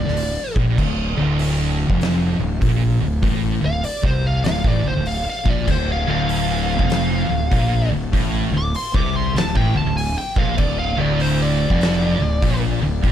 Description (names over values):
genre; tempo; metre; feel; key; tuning
stoner and doom metal; 98 BPM; 4/4; swing 64% on 8ths; D minor; A4 = 440 Hz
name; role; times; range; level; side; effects
fuzz lead guitar; melody; 0.0-12.6 s; C5 to D6; -26 LUFS; equal; distortion, ping-pong delay
thick fuzz guitar; riff; 0.0-13.1 s; D2 to C3; -24 LUFS; left 8 dB; distortion
thick fuzz guitar; riff; 0.0-13.1 s; D2 to C3; -24 LUFS; right 7 dB; distortion
fuzz fingered electric bass; bass; 0.0-13.1 s; D1 to C2; -23 LUFS; equal; overdrive, tube saturation
oversized low-tuned drum kit; drums; 0.1-13.1 s; crash cymbal, hi-hat, kick drum, snare drum; -23 LUFS; equal; none
heavy high-gain guitar; riff; 5.7-13.1 s; D2 to C3; -28 LUFS; left 1 dB; distortion
room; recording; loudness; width
little or no reverb; dark, warm production; -17 LUFS; side -10 dB against mid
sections
0.0-13.1 A section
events
lead electric guitar solo 0.0-13.1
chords
0.0 Dm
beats
0.17 | 0.78 1.39 2.01 2.62 | 3.23 3.85 4.46 5.07 | 5.68 6.29 6.91 7.52 | 8.13 8.74 9.36 9.97 | 10.58 11.20 11.81 12.42 | 13.03